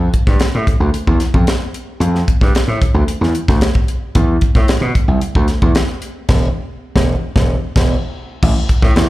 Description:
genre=funk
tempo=112 BPM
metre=4/4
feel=straight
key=unclear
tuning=A4 = 439 Hz
part: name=gritty slap bass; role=bass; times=0.0-9.1 s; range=E1 to B2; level=-15 LUFS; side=equal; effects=overdrive
part: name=tight funk drum kit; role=drums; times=0.1-9.1 s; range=crash cymbal, hi-hat, kick drum, snare drum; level=-15 LUFS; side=equal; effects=none
room=little or no reverb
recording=live gig heard through the venue's PA, club reverb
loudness=-13 LUFS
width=side -17 dB against mid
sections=0.0-8.4 A section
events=band accent 6.3-8.4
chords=none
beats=0.41 0.94 1.48 | 2.01 2.55 3.08 3.62 | 4.15 4.69 5.22 5.76 | 6.29 6.83 7.36 7.89 | 8.43 8.96

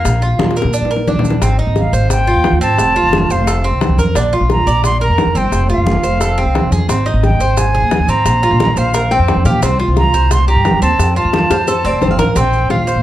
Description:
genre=latin, Cuban son and guajira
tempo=176 BPM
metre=4/4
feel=straight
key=Bb major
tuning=A4 = 440 Hz
part: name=silver concert flute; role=melody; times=0.0-13.0 s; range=F5 to C6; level=-17 LUFS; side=right 2 dB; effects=none
part: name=Cuban tres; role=arpeggios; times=0.0-13.0 s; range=Bb3 to D5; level=-18 LUFS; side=right 2 dB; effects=none
part: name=upright bass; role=bass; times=0.0-13.0 s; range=F1 to Bb2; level=-15 LUFS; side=equal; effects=none
part: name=bongos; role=percussion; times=0.1-12.9 s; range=none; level=-22 LUFS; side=left 5 dB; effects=none
part: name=congas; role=percussion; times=0.1-12.9 s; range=none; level=-21 LUFS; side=equal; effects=none
part: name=maracas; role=percussion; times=0.1-13.0 s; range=none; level=-30 LUFS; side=right 6 dB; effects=none
part: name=flamenco guitar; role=second line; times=9.1-12.3 s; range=C5 to G5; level=-19 LUFS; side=left 3 dB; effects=none
room=light reverb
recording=dark, warm production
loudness=-11 LUFS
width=side -13 dB against mid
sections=0.0-1.4 A section; 1.4-12.4 B section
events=drum fill 0.4-1.4, 11.3-12.4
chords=0.1 Bb; 1.4 Ab6; 2.8 F; 4.2 Bb; 5.5 F; 6.9 Ab; 8.3 Bbsus2; 9.6 Csus4; 11.0 F; 12.4 Bbsus2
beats=| 0.05 0.39 0.74 1.08 | 1.42 1.76 2.10 2.45 | 2.79 3.13 3.47 3.81 | 4.16 4.50 4.84 5.18 | 5.52 5.87 6.21 6.55 | 6.89 7.23 7.57 7.92 | 8.26 8.60 8.94 9.28 | 9.62 9.97 10.31 10.65 | 10.99 11.33 11.68 12.02 | 12.36 12.70

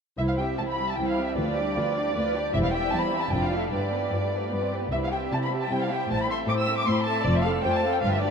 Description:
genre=quick classical-period movement for symphony orchestra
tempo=154 BPM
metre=3/4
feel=rubato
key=C major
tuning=A4 = 440 Hz
part: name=muted chamber violin section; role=melody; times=0.2-8.3 s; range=D5 to E6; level=-28 LUFS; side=left 1 dB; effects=none
part: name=muted chamber violin section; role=second line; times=0.2-8.3 s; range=E4 to F5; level=-30 LUFS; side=equal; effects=none
part: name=muted chamber viola section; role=accompaniment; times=0.2-8.3 s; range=E3 to A4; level=-31 LUFS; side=right 2 dB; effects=none
part: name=muted chamber double bass section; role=bass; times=0.2-8.3 s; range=E1 to D2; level=-31 LUFS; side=equal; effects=none
part: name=muted symphonic cello section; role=bass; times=0.2-8.3 s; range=C2 to C3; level=-31 LUFS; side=equal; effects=none
room=wet cathedral reverb, RT60 6.8 s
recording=in a vast, echoing space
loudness=-23 LUFS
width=side -6 dB against mid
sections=0.2-8.3 A section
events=none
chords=0.2 C; 1.4 G7/D; 2.5 C/E; 3.3 Dm/F; 3.7 G; 4.9 C; 6.1 Am; 7.2 F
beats=| 0.18 0.58 0.98 | 1.37 1.76 2.15 | 2.54 2.92 3.31 | 3.70 4.10 4.51 | 4.91 5.31 5.71 | 6.09 6.48 6.87 | 7.25 7.63 8.02

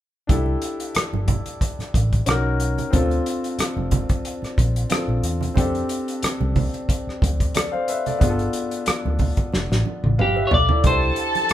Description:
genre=lush 1970s-style soul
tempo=91 BPM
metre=4/4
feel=swing 54% on 16ths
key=C major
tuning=A4 = 440 Hz
part: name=clear concert grand piano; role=accompaniment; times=0.3-11.5 s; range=B3 to F5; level=-26 LUFS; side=left 2 dB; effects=none
part: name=vintage muted fingered electric bass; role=bass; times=0.3-11.5 s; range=F1 to F2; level=-23 LUFS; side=equal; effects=none
part: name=warm soul drum kit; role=drums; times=0.3-11.5 s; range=hi-hat, kick drum, rim click, snare drum, toms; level=-22 LUFS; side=equal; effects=none
part: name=congas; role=percussion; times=0.3-11.5 s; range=none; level=-30 LUFS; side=right 7 dB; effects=none
part: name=semi-hollow electric guitar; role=melody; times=10.2-11.5 s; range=G4 to D5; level=-21 LUFS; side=equal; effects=none
part: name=warm studio string section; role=second line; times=10.8-11.5 s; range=A4 to A5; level=-22 LUFS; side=equal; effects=none
room=moderate large studio reverb, RT60 0.8 s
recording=band playing live in one room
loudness=-19 LUFS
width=side -12 dB against mid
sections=0.3-10.8 A section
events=drum fill 9.5-10.8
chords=0.3 C69; 2.3 Bmaj9; 2.9 Bbmaj9; 5.6 F69; 8.2 G9; 10.8 C69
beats=| 0.29 0.95 1.61 2.27 | 2.93 3.59 4.25 4.91 | 5.57 6.23 6.89 7.55 | 8.21 8.87 9.53 10.18 | 10.84 11.50

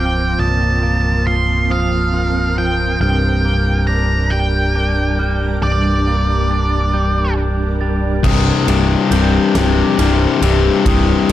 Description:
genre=post-rock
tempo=46 BPM (dotted quarters)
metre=6/8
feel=straight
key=C dorian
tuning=A4 = 440 Hz
part: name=octave-fuzz lead guitar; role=melody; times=0.0-7.3 s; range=D5 to C6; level=-20 LUFS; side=right 1 dB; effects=distortion, slapback echo
part: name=shimmering ambient pad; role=sustained chords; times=0.0-11.3 s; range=F3 to C6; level=-25 LUFS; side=right 3 dB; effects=chorus, built-in reverb
part: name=glockenspiel with rubber mallets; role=arpeggios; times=0.0-11.3 s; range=D6 to A6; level=-29 LUFS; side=right 10 dB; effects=slapback echo
part: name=twangy electric guitar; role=arpeggios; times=0.0-11.3 s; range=C2 to F4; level=-23 LUFS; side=left 2 dB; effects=slapback echo
part: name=picked electric bass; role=bass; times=0.0-11.3 s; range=C1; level=-17 LUFS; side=right 1 dB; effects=none
part: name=overdriven electric guitar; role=riff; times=8.2-11.3 s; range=C2 to C3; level=-14 LUFS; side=left 7 dB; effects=none
part: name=huge arena drum kit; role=drums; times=8.2-11.3 s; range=crash cymbal, kick drum, ride cymbal, snare drum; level=-21 LUFS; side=equal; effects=none
room=small room ambience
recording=dark, warm production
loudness=-13 LUFS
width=side -13 dB against mid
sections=0.0-8.2 A section; 8.2-11.3 B section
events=build-up 8.2-11.3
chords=0.0 Bbsus2/C; 3.0 Gm/C; 8.2 Cmadd9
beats=| 0.39 1.70 | 3.01 4.32 | 5.62 6.93 | 8.24 9.55 | 10.86

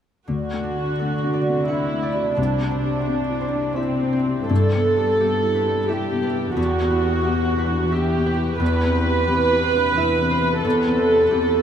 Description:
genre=cinematic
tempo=88 BPM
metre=3/4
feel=rubato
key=unclear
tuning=A4 = 440 Hz
part: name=felt-muted upright piano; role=accompaniment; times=0.3-11.6 s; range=C2 to G4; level=-25 LUFS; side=left 3 dB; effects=none
part: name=warm studio viola section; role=accompaniment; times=0.3-11.6 s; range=C4 to B4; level=-21 LUFS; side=right 2 dB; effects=none
part: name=concert harp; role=arpeggios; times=0.3-11.6 s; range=E2 to F#5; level=-26 LUFS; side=equal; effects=none
part: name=warm studio cello section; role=bass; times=0.3-11.6 s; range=E2 to D3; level=-27 LUFS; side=equal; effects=none
room=moderate huge ambient reverb, RT60 7.9 s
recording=in a vast, echoing space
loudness=-18 LUFS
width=side -8 dB against mid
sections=0.3-11.6 A section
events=none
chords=0.3 D; 2.4 C; 4.5 G6; 6.6 Em; 8.6 C/E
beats=| 0.29 1.00 1.69 | 2.38 3.07 3.77 | 4.50 5.21 5.89 | 6.57 7.25 7.93 | 8.61 9.29 9.98 | 10.65 11.32

